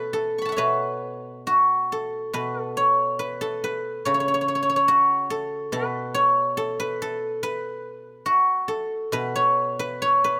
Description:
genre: chinese traditional, Chinese solo plucked strings.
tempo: 70 BPM.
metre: 4/4.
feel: rubato.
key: unclear.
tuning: A4 = 441 Hz.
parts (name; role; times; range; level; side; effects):
guzheng; solo; 0.0-10.4 s; B2 to C#6; -24 LUFS; equal; none.
room: light reverb.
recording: close, detailed microphones.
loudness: -23 LUFS.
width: mono.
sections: 0.0-10.4 A section.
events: none.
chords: none.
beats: 0.59 1.49 | 2.37 3.22 4.08 4.92 | 5.76 6.61 7.45 8.29 | 9.15 10.03.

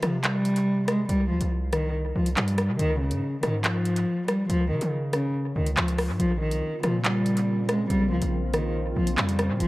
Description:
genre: hip hop, drill.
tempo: 141 BPM.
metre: 4/4.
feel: half-time.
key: unclear.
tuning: A4 = 440 Hz.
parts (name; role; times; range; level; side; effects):
dark cello; melody; 0.0-9.7 s; Db3 to Ab3; -25 LUFS; equal; analog delay.
distorted 808-style bass; bass; 0.0-9.7 s; F1 to Db3; -28 LUFS; equal; distortion.
drill drum kit; drums; 0.0-9.7 s; handclaps, hi-hat, rim click; -29 LUFS; equal; analog delay.
dark analog pad; sustained chords; 6.2-9.7 s; Db3 to F4; -33 LUFS; equal; chorus.
room: light reverb.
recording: echo-heavy mix, cassette tape.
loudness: -23 LUFS.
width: side -19 dB against mid.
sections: 0.0-9.7 A section.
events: none.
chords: 0.0 C5; 2.8 Db; 6.2 Bbmadd9.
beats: 0.24 0.67 | 1.09 1.52 1.94 2.37 | 2.79 3.22 3.65 4.07 | 4.50 4.92 5.35 5.77 | 6.20 6.62 7.05 7.47 | 7.90 8.33 8.75 9.18 | 9.60.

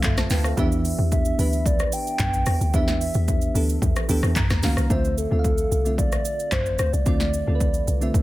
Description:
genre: amapiano.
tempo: 111 BPM.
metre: 4/4.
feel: straight.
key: D dorian.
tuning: A4 = 440 Hz.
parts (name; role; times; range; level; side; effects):
bell-like FM electric piano; accompaniment; 0.0-8.2 s; D3 to Bb5; -27 LUFS; right 1 dB; chorus.
deep log drum bass; bass; 0.0-8.2 s; A1 to E2; -23 LUFS; equal; none.
deep house drum kit; drums; 0.0-8.2 s; handclaps, hi-hat, kick drum, rim click, shaker, snare drum, toms; -24 LUFS; equal; none.
hollow clarinet-like synth lead; melody; 1.1-8.2 s; A4 to G5; -27 LUFS; equal; chorus, ping-pong delay.
room: little or no reverb.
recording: none.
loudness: -20 LUFS.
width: side -17 dB against mid.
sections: 0.0-4.9 A section; 4.9-8.2 B section.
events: drop 0.0-4.9; FM electric piano fill 3.8-4.9.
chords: 0.0 Dm9; 0.6 Em7; 4.4 Ebm9; 4.9 Dm9.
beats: 0.03 | 0.57 1.11 1.66 2.20 | 2.74 3.28 3.82 4.36 | 4.90 5.44 5.98 6.52 | 7.06 7.60 8.14.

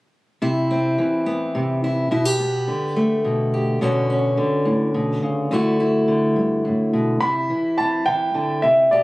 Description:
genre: folk.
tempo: 71 BPM (dotted quarters).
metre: 6/8.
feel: straight.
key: unclear.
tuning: A4 = 440 Hz.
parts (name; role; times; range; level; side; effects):
fingerpicked steel-string acoustic guitar; accompaniment; 0.4-9.0 s; D2 to G4; -19 LUFS; equal; none.
clear upright piano; melody; 7.2-9.0 s; D5 to B5; -17 LUFS; equal; analog delay.
room: light reverb.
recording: recorded on a phone in the room, studio ambience, compression.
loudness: -18 LUFS.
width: side -20 dB against mid.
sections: 0.4-7.2 A section; 7.2-9.0 B section.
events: none.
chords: 0.4 Cmaj7; 2.1 Gadd9/B; 3.8 Bmadd9; 5.5 Dadd9; 7.2 Cmaj7.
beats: | 0.41 1.26 | 2.11 2.96 | 3.81 4.66 | 5.51 6.36 | 7.21 8.06 | 8.91.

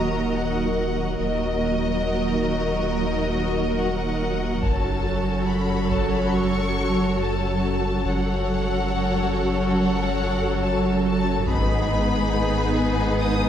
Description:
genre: cinematic, hybrid orchestral and electronic film score.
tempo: 70 BPM.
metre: 4/4.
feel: straight.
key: unclear.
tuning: A4 = 442 Hz.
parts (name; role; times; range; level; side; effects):
clear symphonic violin section; melody; 0.0-13.5 s; Eb5 to Eb6; -30 LUFS; left 4 dB; none.
rich symphonic violin section; second line; 0.0-13.5 s; Ab4 to Eb5; -29 LUFS; left 2 dB; none.
rich symphonic viola section; accompaniment; 0.0-13.5 s; Gb3 to Gb4; -29 LUFS; equal; none.
hollow soft pad; sustained chords; 0.0-13.5 s; Gb3 to Bb4; -27 LUFS; right 1 dB; ensemble chorus.
pure sine sub bass; bass; 0.0-13.5 s; Eb1 to Ab1; -28 LUFS; equal; none.
rich symphonic cello section; bass; 0.0-13.5 s; Eb2 to Ab2; -27 LUFS; right 3 dB; none.
impact; sound effects; 0.0-1.2 s; none; barely audible; none; none.
solo taiko drums; drums; 4.6-6.3, 11.5-13.2 s; none; -28 LUFS; equal; none.
room: wet scoring stage reverb, RT60 1.5 s.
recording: heard from further back in the room.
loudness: -20 LUFS.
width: side -9 dB against mid.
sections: 0.0-13.5 A section.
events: impact 0.0-1.2.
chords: 0.0 Ebm; 4.6 Gbm; 11.5 Abm.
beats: 0.34 | 1.20 2.06 2.92 3.77 | 4.63 5.49 6.34 7.20 | 8.06 8.91 9.77 10.63 | 11.49 12.34 13.20.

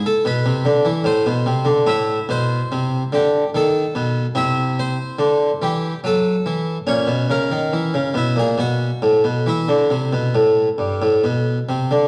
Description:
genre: classical, baroque-style suite movement for harpsichord.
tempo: 71 BPM.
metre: 3/4.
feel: uneven beats, rubato.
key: E minor.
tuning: A4 = 438 Hz.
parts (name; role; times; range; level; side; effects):
harpsichord; solo; 0.0-12.1 s; G2 to E5; -19 LUFS; equal; none.
room: wet recital hall reverb, RT60 1.6 s.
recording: worn, warbling old tape, cassette tape, warbly pitch drift.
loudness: -19 LUFS.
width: mono.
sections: 0.0-12.1 A section.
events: none.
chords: 0.0 E7(no3); 1.1 Am; 1.9 Am11; 3.5 B7/D#; 4.4 C; 6.0 Esus24; 6.9 A#m7b5; 8.6 B5; 9.4 Em.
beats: 0.24 1.06 | 1.88 2.71 3.54 | 4.36 5.19 6.04 | 6.87 7.71 8.57 | 9.45 10.35 11.25.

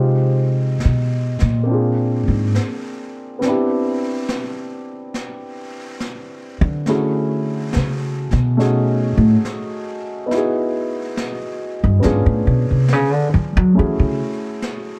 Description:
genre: jazz ballad.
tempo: 70 BPM.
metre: 4/4.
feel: swing 67% on 8ths.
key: unclear.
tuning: A4 = 439 Hz.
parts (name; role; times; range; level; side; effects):
warm grand piano; accompaniment; 0.0-15.0 s; Ab3 to C5; -24 LUFS; equal; none.
upright bass; bass; 0.0-14.2 s; G2 to F#3; -18 LUFS; equal; none.
snare drum and brushed snare drum; drums; 0.8-15.0 s; none; -34 LUFS; equal; none.
room: light reverb.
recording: dark, warm production.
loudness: -19 LUFS.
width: mono.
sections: 0.0-15.0 A section.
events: upright bass solo 0.0-15.0.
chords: 0.0 Fm7; 1.7 A#9; 3.4 Cmaj9; 6.9 F#m7; 8.6 B13; 10.3 Emaj7; 12.0 C#7b9; 13.8 F#m7.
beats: 0.82 1.69 2.56 | 3.44 4.30 5.17 6.03 | 6.89 7.75 8.60 9.46 | 10.32 11.18 12.04 12.90 | 13.77 14.63.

